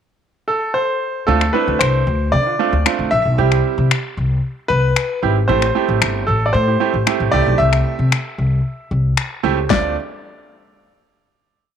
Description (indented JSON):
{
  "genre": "dance-pop",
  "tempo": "114 BPM",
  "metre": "4/4",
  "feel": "straight",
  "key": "D dorian",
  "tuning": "A4 = 440 Hz",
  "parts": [
    { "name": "bright grand piano", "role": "melody", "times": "0.5-9.9 s", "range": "A4 to E5", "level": "-19 LUFS", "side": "left 1 dB", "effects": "slapback echo" },
    { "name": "bright grand piano", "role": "accompaniment", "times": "1.3-9.9 s", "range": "G3 to G4", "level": "-20 LUFS", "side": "right 11 dB", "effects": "sidechain pumping" },
    { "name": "upright bass", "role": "bass", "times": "1.3-9.9 s", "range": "G1 to D3", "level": "-18 LUFS", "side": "left 1 dB", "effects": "sidechain pumping" },
    { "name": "pop drum kit", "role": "drums", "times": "1.4-9.8 s", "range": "finger snaps, kick drum, snare drum", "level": "-20 LUFS", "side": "left 8 dB", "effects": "overdrive" }
  ],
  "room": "moderate spring reverb, RT60 1.8 s, studio ambience",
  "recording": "1960s-style stereo with parts hard left and right",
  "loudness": "-15 LUFS",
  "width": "side -8 dB against mid",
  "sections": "0.0-1.3 pickup bar; 1.3-9.7 verse; 9.7-11.8 final chord",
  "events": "none",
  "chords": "0.0 N.C.; 1.3 Dm7; 3.4 C; 5.5 Am7; 7.3 C6; 9.7 Dm7",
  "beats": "0.23 0.75 | 1.28 1.80 2.33 2.86 | 3.38 3.91 4.44 4.96 | 5.49 6.02 6.54 7.07 | 7.59 8.12 8.65 9.17 | 9.70"
}